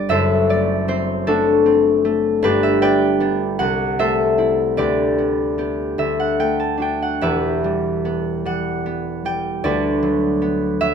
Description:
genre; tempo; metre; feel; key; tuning
classical, solo harp piece; 51 BPM (dotted quarters); 6/8; rubato; G major; A4 = 441 Hz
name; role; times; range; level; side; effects
concert harp; solo; 0.0-10.9 s; E1 to A5; -16 LUFS; left 1 dB; none
room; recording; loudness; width
light reverb; minimal, uncompressed stereo recording; -16 LUFS; side -7 dB against mid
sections
0.0-10.9 A section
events
none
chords
0.1 D7/F#; 2.4 G; 3.6 Am/C; 4.8 G/D; 6.0 D; 7.2 Em; 9.6 Bm/D

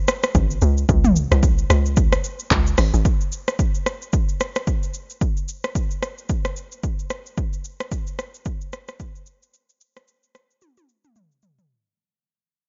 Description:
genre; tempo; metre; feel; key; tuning
amapiano; 111 BPM; 4/4; swing 58% on 16ths; unclear; A4 = 441 Hz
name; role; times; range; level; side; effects
deep house drum kit; drums; 0.1-11.7 s; handclaps, hi-hat, kick drum, rim click, shaker, toms; -23 LUFS; equal; overdrive
tight log drum bass; bass; 0.3-3.0 s; Ab1 to Db2; -21 LUFS; equal; none
room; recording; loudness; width
little or no reverb; nothing above 7.4 kHz; -22 LUFS; mono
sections
0.0-3.1 A section; 3.1-11.7 B section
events
drop 0.0-3.1; fade-out 3.1-11.7; drum fill 10.6-11.7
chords
none

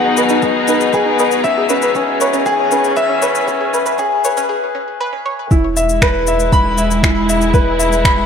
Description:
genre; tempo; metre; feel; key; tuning
piano and strings electronica; 118 BPM; 4/4; straight; E major; A4 = 438 Hz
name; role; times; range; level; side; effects
muted studio string section; sustained chords; 0.0-8.3 s; B2 to G#4; -18 LUFS; left 2 dB; none
warm upright piano; riff; 0.0-8.3 s; C#4 to B5; -16 LUFS; left 1 dB; ping-pong delay
warm sub bass; bass; 0.0-8.3 s; E1 to C#2; -24 LUFS; equal; sidechain pumping
soft round pluck; arpeggios; 0.2-5.3 s; C#4 to D#5; -21 LUFS; right 2 dB; chorus, sidechain pumping, ping-pong delay
electronic shaker and finger snaps; drums; 0.2-8.2 s; none; -22 LUFS; left 3 dB; overdrive
electronic kick drum; drums; 0.4-8.2 s; none; -15 LUFS; equal; overdrive
room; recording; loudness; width
wet lush hall reverb, RT60 1.6 s, digital ambience; high-pass filter; -12 LUFS; side -7 dB against mid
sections
0.0-5.5 A section; 5.5-8.3 B section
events
build-up 0.0-5.5; break 4.5-5.5; drop 5.5-8.3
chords
0.0 G#m7; 1.4 C#m7; 5.5 E

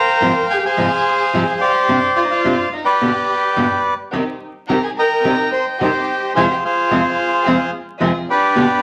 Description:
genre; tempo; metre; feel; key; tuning
tango; 108 BPM; 4/4; rubato; unclear; A4 = 436 Hz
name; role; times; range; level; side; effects
bandoneon; melody; 0.0-8.8 s; G4 to C6; -18 LUFS; equal; none
warm symphonic violin section; second line; 0.0-8.8 s; D4 to C5; -25 LUFS; equal; none
nylon-string guitar; accompaniment; 0.2-8.7 s; F2 to G4; -22 LUFS; equal; none
warm chamber string section; stabs; 4.1-8.8 s; B3 to Ab4; -26 LUFS; equal; none
room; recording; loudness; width
wet studio reverb, RT60 0.8 s; vinyl crackle; -17 LUFS; mono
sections
0.0-8.8 A section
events
none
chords
0.0 Fmadd9/Ab; 1.9 Gsus4; 3.0 G; 4.1 Cm; 6.4 Fm

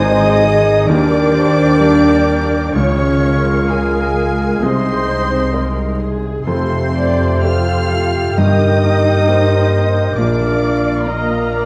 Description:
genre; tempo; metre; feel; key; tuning
cinematic, emotional film score for orchestra; 65 BPM; 4/4; rubato; Eb major; A4 = 440 Hz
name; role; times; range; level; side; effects
muted symphonic violin section; melody; 0.0-11.7 s; Ab5 to F6; -28 LUFS; equal; none
dark clarinet; second line; 0.0-11.7 s; Ab4 to Bb4; -27 LUFS; equal; none
mellow hollow silver concert flute; second line; 0.0-11.7 s; Ab4 to F5; -24 LUFS; equal; none
muted symphonic violin section; second line; 0.0-11.7 s; Ab4 to F5; -28 LUFS; equal; none
warm oboe; second line; 0.0-11.7 s; Eb5 to Ab5; -27 LUFS; equal; none
felt-muted upright piano; accompaniment; 0.0-11.7 s; F1 to Eb5; -25 LUFS; equal; none
muted symphonic viola section; accompaniment; 0.0-11.7 s; Ab4 to Eb5; -26 LUFS; equal; none
warm French horn section; sustained chords; 0.0-11.7 s; Ab3 to Ab4; -26 LUFS; equal; none
concert harp; arpeggios; 0.0-11.7 s; F2 to Bb4; -26 LUFS; equal; none
muted symphonic cello section; bass; 0.0-11.7 s; Ab3 to F4; -22 LUFS; equal; none
muted symphonic double bass section; bass; 0.0-11.7 s; Ab1 to G2; -21 LUFS; equal; none
timpani; percussion; 0.9-2.2 s; none; barely audible; none; none
room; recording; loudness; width
moderate scoring stage reverb, RT60 1.7 s; dark, warm production, vinyl crackle; -14 LUFS; mono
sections
0.0-11.7 A section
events
none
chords
0.0 Ab; 0.9 Eb; 2.8 Db; 4.6 Ab/C; 6.5 Fadd9; 8.4 Eb/G; 10.2 Bb

